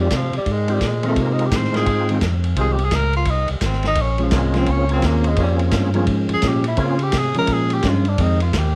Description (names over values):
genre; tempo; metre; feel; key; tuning
soul jazz organ trio; 171 BPM; 4/4; swing 63% on 8ths; F minor; A4 = 439 Hz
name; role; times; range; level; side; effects
clear tenor saxophone; melody; 0.0-8.8 s; F3 to C5; -26 LUFS; equal; plate reverb
overdriven tonewheel organ; melody; 0.0-7.0 s; Ab3 to G5; -26 LUFS; equal; slow rotary speaker, chorus vibrato, plate reverb
tonewheel organ; bass; 0.0-8.8 s; Ab1 to Db3; -22 LUFS; equal; overdrive, slow rotary speaker
vintage drum kit; drums; 0.1-8.6 s; hi-hat, kick drum, ride cymbal, snare drum; -26 LUFS; equal; none
vintage hollow-body jazz guitar; accompaniment; 1.0-8.4 s; Eb3 to Db4; -26 LUFS; equal; none
room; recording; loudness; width
light reverb; dark, warm production; -19 LUFS; mono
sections
0.0-8.8 A section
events
tenor saxophone solo 0.0-8.8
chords
0.0 Fm7; 4.0 Bbm7; 8.2 Fm7